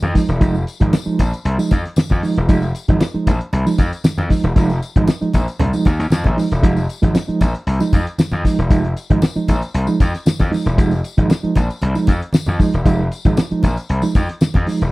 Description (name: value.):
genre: funk.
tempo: 116 BPM.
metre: 4/4.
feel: straight.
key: F minor.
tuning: A4 = 440 Hz.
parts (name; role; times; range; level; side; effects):
gritty slap bass; bass; 0.0-14.9 s; E1 to F2; -19 LUFS; left 1 dB; overdrive.
cloth-damped thuddy drum kit; drums; 0.0-14.9 s; hi-hat, kick drum, snare drum; -15 LUFS; left 1 dB; none.
congas; percussion; 0.0-14.7 s; none; -24 LUFS; right 1 dB; none.
mellow reed electric piano; stabs; 0.1-14.8 s; F3 to Eb4; -18 LUFS; right 3 dB; fast tremolo.
tambourine; percussion; 0.2-14.9 s; none; -37 LUFS; left 6 dB; none.
room: little or no reverb.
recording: dry, close 1970s-style studio recording.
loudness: -14 LUFS.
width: side -20 dB against mid.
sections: 0.0-14.9 A section.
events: none.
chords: 0.0 Fm7.